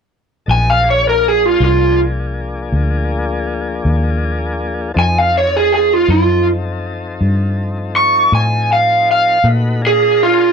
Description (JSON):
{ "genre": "slow blues", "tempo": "54 BPM (dotted quarters)", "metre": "12/8", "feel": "straight", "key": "Bb mixolydian", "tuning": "A4 = 440 Hz", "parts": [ { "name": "lead guitar through a small cranked amp", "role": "melody", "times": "0.5-10.5 s", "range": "F4 to Db6", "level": "-11 LUFS", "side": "right 1 dB", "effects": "overdrive" }, { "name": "tonewheel organ", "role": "sustained chords", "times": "0.5-10.5 s", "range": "F3 to Cb5", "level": "-24 LUFS", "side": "left 4 dB", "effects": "slow rotary speaker" }, { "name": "vintage muted fingered electric bass", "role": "bass", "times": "0.5-10.5 s", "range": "Bb1 to Bb2", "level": "-17 LUFS", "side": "left 1 dB", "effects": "none" } ], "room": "little or no reverb", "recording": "dry, gritty hardware recording", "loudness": "-12 LUFS", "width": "side -6 dB against mid", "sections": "0.5-9.4 A section; 9.4-10.5 B section", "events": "lead electric guitar solo 9.4-10.5", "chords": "0.5 Bb7; 5.0 F7; 9.4 Bb7" }